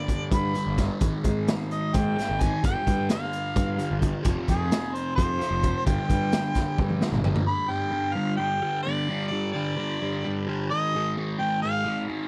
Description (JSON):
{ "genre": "psychedelic rock", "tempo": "260 BPM (eighths)", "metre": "7/8", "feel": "straight", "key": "unclear", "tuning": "A4 = 443 Hz", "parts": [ { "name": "mellow harmonica", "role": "melody", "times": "0.0-12.0 s", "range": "Ab4 to B5", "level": "-32 LUFS", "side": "equal", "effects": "tape echo" }, { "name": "fuzz guitar", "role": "riff", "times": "0.0-12.3 s", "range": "F2 to Ab3", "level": "-31 LUFS", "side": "equal", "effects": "distortion, phaser" }, { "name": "crunchy breakbeat drum kit", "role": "drums", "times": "0.1-7.5 s", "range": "hi-hat, kick drum, snare drum, toms", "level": "-29 LUFS", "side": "equal", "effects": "none" }, { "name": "fuzz picked electric bass", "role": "bass", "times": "0.3-7.3 s", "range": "F1 to Ab2", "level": "-31 LUFS", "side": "equal", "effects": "overdrive" } ], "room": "little or no reverb", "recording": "none", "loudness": "-26 LUFS", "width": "mono", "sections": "0.0-7.5 A section; 7.5-12.3 B section", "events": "drum fill 6.8-7.5", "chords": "0.0 G; 1.0 Ab5; 2.6 G5; 4.2 Fm; 5.9 G5; 10.7 Ab5", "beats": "0.08 0.31 0.55 0.78 | 1.01 1.24 1.47 1.70 1.94 2.17 2.40 | 2.63 2.86 3.09 3.32 3.55 3.79 4.02 | 4.25 4.48 4.71 4.94 5.17 5.40 5.63 | 5.86 6.09 6.32 6.55 6.78 7.01 7.24 | 7.47 7.70 7.93 8.16 8.39 8.62 8.86 | 9.09 9.31 9.54 9.78 10.01 10.23 10.46 | 10.70 10.93 11.15 11.38 11.62 11.85 12.08" }